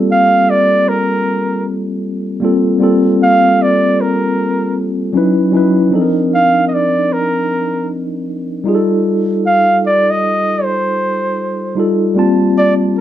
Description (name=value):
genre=R&B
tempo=77 BPM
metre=4/4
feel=swing 63% on 16ths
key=G minor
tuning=A4 = 440 Hz
part: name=mellow tine electric piano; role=accompaniment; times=0.0-13.0 s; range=F3 to A5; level=-14 LUFS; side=left 1 dB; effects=medium stereo tremolo
part: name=warm flugelhorn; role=melody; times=0.1-13.0 s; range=Bb4 to F5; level=-13 LUFS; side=right 1 dB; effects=none
room=wet studio reverb, RT60 0.6 s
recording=band playing live in one room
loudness=-11 LUFS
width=side -12 dB against mid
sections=0.0-13.0 A section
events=none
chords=0.0 Gm11; 5.1 C#m11; 5.9 Cm11; 8.7 F9; 12.2 Gm11